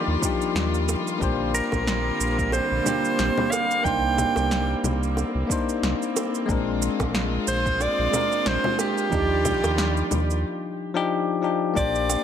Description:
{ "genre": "sunset chillout", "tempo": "91 BPM", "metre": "4/4", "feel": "swing 56% on 16ths", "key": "unclear", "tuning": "A4 = 445 Hz", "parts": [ { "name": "warm soprano saxophone", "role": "melody", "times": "0.0-12.2 s", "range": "G4 to G5", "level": "-25 LUFS", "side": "right 1 dB", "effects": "tape echo" }, { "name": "bell-like tine electric piano", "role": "accompaniment", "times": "0.0-12.2 s", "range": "F3 to C5", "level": "-26 LUFS", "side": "moving between left 6 dB and right 7 dB", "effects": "auto-pan, tape echo" }, { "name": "rich chamber string section", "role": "sustained chords", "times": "0.0-12.2 s", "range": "D3 to D5", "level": "-30 LUFS", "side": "left 1 dB", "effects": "none" }, { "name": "round analog bass", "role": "bass", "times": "0.1-12.2 s", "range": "Bb1 to Eb2", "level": "-27 LUFS", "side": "equal", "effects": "none" }, { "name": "electronic kick drum", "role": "drums", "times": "0.2-11.9 s", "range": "none", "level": "-29 LUFS", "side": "equal", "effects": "overdrive" }, { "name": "electronic shaker, snare drum and congas", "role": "drums", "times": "0.2-12.2 s", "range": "none", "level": "-29 LUFS", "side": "equal", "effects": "overdrive" }, { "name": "bongos", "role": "percussion", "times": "0.9-12.2 s", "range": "none", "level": "-33 LUFS", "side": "right 2 dB", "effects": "none" } ], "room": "moderate plate reverb, RT60 1.9 s", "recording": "none", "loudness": "-21 LUFS", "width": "side -8 dB against mid", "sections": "0.0-11.8 A section", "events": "break 10.4-11.8", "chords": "0.0 Ebmaj9; 1.2 Bb69; 3.9 Cm9; 6.5 Bb9; 9.1 Ebmaj9" }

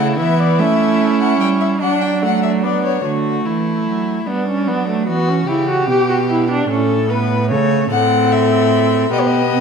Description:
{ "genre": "classical, baroque-style fugue for string quartet", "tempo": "49 BPM (dotted quarters)", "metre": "6/8", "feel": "straight", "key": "unclear", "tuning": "A4 = 440 Hz", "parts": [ { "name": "warm violin", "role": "melody", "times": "0.0-3.0, 7.9-9.6 s", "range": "C5 to G5", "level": "-20 LUFS", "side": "left 9 dB", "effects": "none" }, { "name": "rich violin", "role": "second line", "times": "0.0-9.6 s", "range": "D4 to C#5", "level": "-20 LUFS", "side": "left 4 dB", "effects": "none" }, { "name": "warm viola", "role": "accompaniment", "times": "0.0-9.6 s", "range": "A3 to G4", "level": "-18 LUFS", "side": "right 3 dB", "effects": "none" }, { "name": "warm cello", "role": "bass", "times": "0.0-9.6 s", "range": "A2 to A3", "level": "-19 LUFS", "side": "right 4 dB", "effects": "none" } ], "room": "moderate scoring stage reverb, RT60 1.7 s", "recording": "minimal, uncompressed stereo recording", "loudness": "-14 LUFS", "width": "side -6 dB against mid", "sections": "0.0-3.0 A section; 3.0-9.6 B section", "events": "none", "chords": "0.0 A/C#; 0.6 A7; 1.8 D/F#; 3.0 D; 4.3 G; 5.5 C#dim; 6.7 Aadd9; 7.9 F#dim/A" }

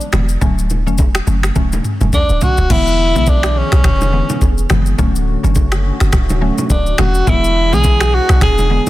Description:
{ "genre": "afrobeats", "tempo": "105 BPM", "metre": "4/4", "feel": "swing 58% on 16ths", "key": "E mixolydian", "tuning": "A4 = 441 Hz", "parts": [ { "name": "breathy tenor saxophone", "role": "melody", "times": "0.0-8.9 s", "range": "C#4 to G#4", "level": "-17 LUFS", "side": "equal", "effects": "tape echo" }, { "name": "afro-pop drum kit", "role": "drums", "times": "0.0-8.9 s", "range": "crash cymbal, finger snaps, kick drum, rim click, shaker, toms", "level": "-17 LUFS", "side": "equal", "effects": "soft clipping on snare" }, { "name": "mallet-like synth pluck", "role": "accompaniment", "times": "0.1-8.9 s", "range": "D3 to C#4", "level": "-21 LUFS", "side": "left 1 dB", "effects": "chorus, phaser" }, { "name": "warm 808-style bass", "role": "bass", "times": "0.1-8.8 s", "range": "D1 to B1", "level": "-15 LUFS", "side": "equal", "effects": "none" }, { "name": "congas and bongos", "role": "percussion", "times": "0.1-8.9 s", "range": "none", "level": "-24 LUFS", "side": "right 1 dB", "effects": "none" }, { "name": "hollow soft pad", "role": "sustained chords", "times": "2.7-8.9 s", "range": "D3 to G#4", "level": "-24 LUFS", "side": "equal", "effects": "chorus" } ], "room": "little or no reverb", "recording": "dense, heavily limited modern master", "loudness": "-11 LUFS", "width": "side -16 dB against mid", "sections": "0.0-2.7 A section; 2.7-8.9 B section", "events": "drum fill 1.6-2.7", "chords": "0.4 Dmaj7; 2.7 E7; 5.0 Dmaj7; 7.3 E7" }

